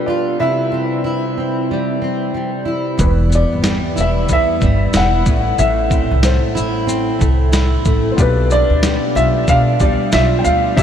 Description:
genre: acoustic pop.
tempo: 93 BPM.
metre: 4/4.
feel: swing 60% on 16ths.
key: E minor.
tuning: A4 = 440 Hz.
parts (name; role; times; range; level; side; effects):
dark upright piano; melody; 0.0-10.8 s; B4 to G5; -19 LUFS; left 1 dB; lush chorus, ping-pong delay.
fingerpicked plugged-in steel-string acoustic guitar; accompaniment; 0.0-10.8 s; E2 to F4; -18 LUFS; equal; double-tracked left and right.
upright bass; bass; 3.0-10.8 s; E1 to B2; -17 LUFS; equal; none.
dusty soul sampler-style drum kit; drums; 3.0-10.8 s; kick drum, shaker, snare drum; -19 LUFS; equal; none.
clear upright piano; accompaniment; 8.2-10.8 s; B3 to E5; -26 LUFS; left 4 dB; none.
room: moderate huge ambient reverb, RT60 8.5 s.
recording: dreamy mix soaked in reverb.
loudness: -13 LUFS.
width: side -9 dB against mid.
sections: 0.0-3.0 A section; 3.0-10.8 B section.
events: none.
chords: 0.4 C; 3.0 Em; 5.3 Am; 8.2 G7/B.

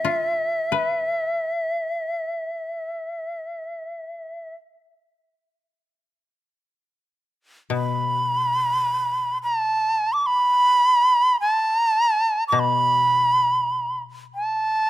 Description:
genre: japanese traditional, Japanese chamber music.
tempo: free time.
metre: none.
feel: none.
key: E in sen.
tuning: A4 = 440 Hz.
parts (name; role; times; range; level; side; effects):
bright reedy shakuhachi; melody; 0.0-14.9 s; E5 to D6; -20 LUFS; right 1 dB; none.
koto; accompaniment; 0.0-3.5, 7.7-14.9 s; B2 to B4; -28 LUFS; left 7 dB; none.
room: light reverb.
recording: close, detailed microphones.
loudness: -19 LUFS.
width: side -15 dB against mid.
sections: 0.0-5.7 A section; 5.7-14.9 A section.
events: none.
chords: none.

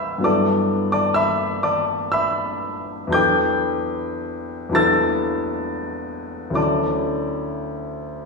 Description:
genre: classical, impressionist solo piano.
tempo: 32-43 BPM (dotted quarters).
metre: 6/8.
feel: rubato.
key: unclear.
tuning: A4 = 444 Hz.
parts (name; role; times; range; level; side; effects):
clear grand piano; solo; 0.0-8.3 s; D2 to A6; -19 LUFS; left 1 dB; none.
room: wet concert hall reverb, RT60 1.8 s.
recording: heard from further back in the room, studio reverb, faint mains hum.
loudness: -19 LUFS.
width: side -3 dB against mid.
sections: 0.0-8.3 A section.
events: none.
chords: 0.2 Bm7/G; 3.2 Em11; 6.6 Dmaj9.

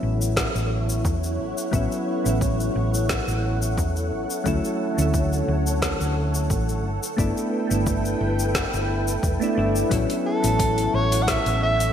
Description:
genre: sunset chillout.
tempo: 88 BPM.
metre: 4/4.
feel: swing 54% on 16ths.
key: A major.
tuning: A4 = 440 Hz.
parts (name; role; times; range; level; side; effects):
soft electric-piano-like synth keys; accompaniment; 0.0-11.9 s; F#3 to E4; -27 LUFS; moving between left 4 dB and right 3 dB; chorus, auto-pan, ping-pong delay.
soft string machine; sustained chords; 0.0-11.9 s; D3 to G5; -29 LUFS; left 1 dB; ensemble chorus.
hollow-body short-scale fingered electric bass; bass; 0.0-11.9 s; E1 to E2; -24 LUFS; equal; none.
deep house drum kit; drums; 0.2-11.9 s; hi-hat, shaker, snare drum; -29 LUFS; left 1 dB; gated reverb.
electronic kick drum; drums; 0.4-11.4 s; none; -27 LUFS; equal; none.
mellow soprano saxophone; melody; 10.3-11.9 s; A4 to F#5; -22 LUFS; right 1 dB; ping-pong delay.
room: moderate lush hall reverb, RT60 2.1 s.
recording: bright 1980s-style digital production.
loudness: -20 LUFS.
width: side -9 dB against mid.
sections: 0.0-11.9 A section.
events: none.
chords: 0.0 A6; 4.5 Dmaj7; 6.8 G69; 9.9 A6.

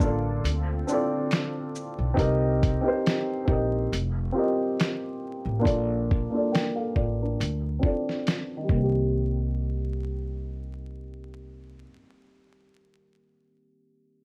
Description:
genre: lo-fi hip hop.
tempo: 69 BPM.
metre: 4/4.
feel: swing 55% on 16ths.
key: C dorian.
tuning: A4 = 440 Hz.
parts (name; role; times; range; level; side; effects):
felt-muted upright piano; accompaniment; 0.0-14.2 s; Eb3 to G5; -30 LUFS; equal; cassette tape, low-pass filter.
warm analog pad; sustained chords; 0.0-2.2 s; D3 to A4; -38 LUFS; equal; chorus, low-pass filter.
upright bass; bass; 0.0-11.8 s; F1 to D2; -30 LUFS; equal; none.
dusty soul sampler-style drum kit; drums; 0.0-8.9 s; hi-hat, kick drum, shaker, snare drum; -28 LUFS; equal; overdrive.
finger snaps; percussion; 1.3-1.5 s; none; barely audible; none; none.
room: light reverb.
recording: vinyl crackle.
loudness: -27 LUFS.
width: mono.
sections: 0.0-9.1 A section; 9.1-12.6 B section.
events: filter sweep 0.0-9.1.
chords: 0.4 Dm7; 2.2 Cm7; 3.9 F9sus4; 5.7 Bbmaj7; 7.4 Dm7; 8.7 Cm7.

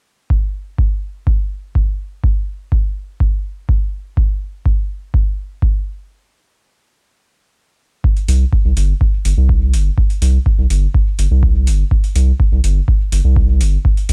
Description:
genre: dub techno.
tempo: 124 BPM.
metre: 4/4.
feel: straight.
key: unclear.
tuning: A4 = 440 Hz.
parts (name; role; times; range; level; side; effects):
electronic kick drum; drums; 0.3-13.9 s; none; -17 LUFS; equal; none.
electronic hi-hat; drums; 8.2-14.1 s; none; -30 LUFS; equal; overdrive.
round analog bass; bass; 8.3-14.1 s; G1 to C2; -15 LUFS; equal; sidechain pumping.
room: little or no reverb.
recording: dry, gritty hardware recording, cassette tape.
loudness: -16 LUFS.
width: mono.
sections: 0.3-8.0 A section; 8.0-14.1 B section.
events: break 6.1-8.0.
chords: none.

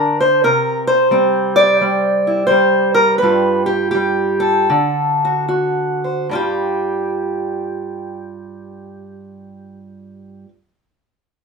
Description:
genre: acoustic country blues, solo or duo.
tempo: 71-89 BPM.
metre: 4/4.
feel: swing 68% on 8ths.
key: unclear.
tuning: A4 = 440 Hz.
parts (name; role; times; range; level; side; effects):
fingerpicked steel-string acoustic guitar; solo; 0.0-10.5 s; G2 to D5; -14 LUFS; equal; none.
room: moderate small room reverb, RT60 0.5 s.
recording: minimal, uncompressed stereo recording.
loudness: -14 LUFS.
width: side -4 dB against mid.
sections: 0.0-6.3 A section; 6.3-9.6 B section.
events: slowing down 0.4-6.3.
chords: 0.4 C5; 3.2 G9; 4.7 D7; 6.3 Fsus2/G.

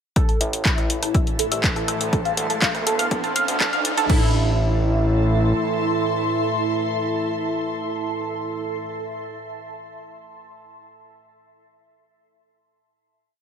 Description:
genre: melodic techno.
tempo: 122 BPM.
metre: 4/4.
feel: straight.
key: A minor.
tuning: A4 = 441 Hz.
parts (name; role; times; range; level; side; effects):
resonant sweep polysynth; melody; 0.2-8.8 s; E4 to A4; -27 LUFS; right 2 dB; chorus, sidechain pumping, tape echo.
analog drone; drone; 1.0-8.8 s; A2 to E3; -32 LUFS; equal; chorus, sidechain pumping.
electronic kick drum; drums; 0.2-4.2 s; none; -21 LUFS; equal; none.
punchy analog drum machine; drums; 0.2-4.2 s; crash cymbal, handclaps, hi-hat, rim click; -24 LUFS; left 1 dB; high-pass filter on snare, high-pass filter on hats, high-pass filter on cymbals, high-pass filter on room.
riser; sound effects; 1.5-4.1 s; none; -31 LUFS; right 2 dB; none.
ethereal airy pad; texture; 1.0-8.8 s; D4 to C6; -27 LUFS; right 1 dB; ensemble chorus, built-in reverb, phaser, sidechain pumping.
tight sequenced synth; arpeggios; 0.3-4.3 s; A4 to F5; -25 LUFS; right 1 dB; chorus, phaser, sidechain pumping, digital delay.
fat analog bass; bass; 0.4-5.5 s; D1 to D2; -23 LUFS; equal; sidechain pumping, high-pass filter.
room: light reverb.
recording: high-pass filter.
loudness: -19 LUFS.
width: side -8 dB against mid.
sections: 0.2-4.1 build; 4.1-8.0 final chord.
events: build-up 0.2-4.1; filter sweep on synth arpeggio sound 0.2-4.1; filter sweep on analog polysynth 0.2-4.1; riser 1.5-4.1.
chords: 0.2 Am; 2.1 Dm7; 4.1 Am.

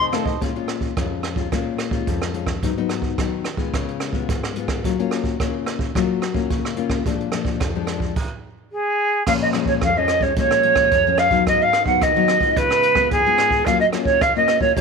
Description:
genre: samba and choro.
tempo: 109 BPM.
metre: 4/4.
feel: straight.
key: Bb minor.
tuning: A4 = 438 Hz.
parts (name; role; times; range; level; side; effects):
jazz flute; melody; 0.0, 8.7-14.8 s; Ab4 to Gb5; -16 LUFS; right 2 dB; none.
nylon-string guitar; accompaniment; 0.0-14.8 s; F2 to F4; -23 LUFS; left 10 dB; none.
jazz brush drum kit; drums; 0.1-14.8 s; crash cymbal, hi-hat, kick drum, rim click; -24 LUFS; right 3 dB; none.
room: light reverb, studio reverb.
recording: 1960s-style stereo.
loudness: -17 LUFS.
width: side -5 dB against mid.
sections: 0.4-9.3 A section; 9.3-14.8 B section.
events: none.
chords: 0.4 Bbm7; 2.6 Abm7; 3.7 Db7; 4.8 Gbmaj7; 7.1 Bb7; 9.3 Bbm7; 11.5 Abm7; 12.6 Db7; 13.7 Gbmaj7.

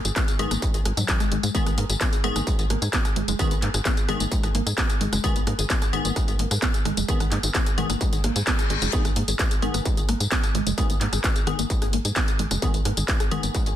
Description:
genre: driving peak-time techno.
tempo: 130 BPM.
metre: 4/4.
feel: straight.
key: G# minor.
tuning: A4 = 439 Hz.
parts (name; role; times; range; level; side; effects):
warbly dusty pluck; riff; 0.0-13.7 s; F#3 to G#4; -31 LUFS; equal; analog chorus, vintage 12-bit sampler grit, sidechain pumping, ping-pong delay.
tight sequencer bass; bass; 0.0-13.7 s; F#1 to G#2; -27 LUFS; equal; sidechain pumping.
techno drum kit; drums; 0.0-13.8 s; handclaps, hi-hat, rim click, tambourine; -27 LUFS; left 1 dB; sidechain pumping on hats, sidechain pumping on perc.
electronic kick drum; drums; 0.2-13.6 s; none; -24 LUFS; equal; distortion.
wavetable chord stab; stabs; 0.4-13.5 s; D#3 to G#4; -31 LUFS; left 2 dB; sidechain pumping, dub echo.
reverse cymbal; sound effects; 8.3-8.9 s; none; -31 LUFS; left 6 dB; none.
room: light reverb.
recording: dense, heavily limited modern master.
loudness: -21 LUFS.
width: side -11 dB against mid.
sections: 0.0-13.8 A section.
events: reverse cymbal 8.3-8.9.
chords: 0.0 G#m.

